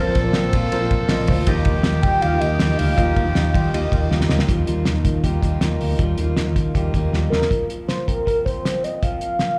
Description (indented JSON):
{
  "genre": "jangly indie pop",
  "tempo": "159 BPM",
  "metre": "4/4",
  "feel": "straight",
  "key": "unclear",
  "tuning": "A4 = 438 Hz",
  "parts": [
    { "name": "warm velvety synth lead", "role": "melody", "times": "0.0-3.5, 7.3-9.6 s", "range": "Bb4 to G5", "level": "-26 LUFS", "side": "equal", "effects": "chorus, tape echo" },
    { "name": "clear trumpet", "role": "second line", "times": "0.0-4.3 s", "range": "G4 to A4", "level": "-30 LUFS", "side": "equal", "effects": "slapback echo" },
    { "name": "fingerpicked plugged-in steel-string acoustic guitar", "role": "accompaniment", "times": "0.0-8.0 s", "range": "Bb2 to F4", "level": "-30 LUFS", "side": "equal", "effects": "slapback echo" },
    { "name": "warbly lo-fi synth keys", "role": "accompaniment", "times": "0.0-4.5 s", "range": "F4 to Eb5", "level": "-30 LUFS", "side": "equal", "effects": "chorus, slapback echo" },
    { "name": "electric guitar through a small old amp", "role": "arpeggios", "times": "0.0-9.6 s", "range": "F3 to G4", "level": "-32 LUFS", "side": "equal", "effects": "tape echo" },
    { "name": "fretless electric bass", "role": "bass", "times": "0.0-7.5 s", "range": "Bb1 to Eb3", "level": "-23 LUFS", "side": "equal", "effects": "none" },
    { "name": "cloth-damped thuddy drum kit", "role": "drums", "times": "0.1-9.5 s", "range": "hi-hat, kick drum, ride cymbal, snare drum", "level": "-24 LUFS", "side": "equal", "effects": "none" }
  ],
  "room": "small room ambience",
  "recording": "live gig heard through the venue's PA, club reverb",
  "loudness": "-20 LUFS",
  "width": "mono",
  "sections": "0.0-4.5 A section; 4.5-7.5 B section; 7.5-9.6 C section",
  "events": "drum fill 4.1-4.5, 7.1-7.5",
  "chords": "0.0 Bbsus2; 1.5 Ebadd9; 7.5 Fsus4"
}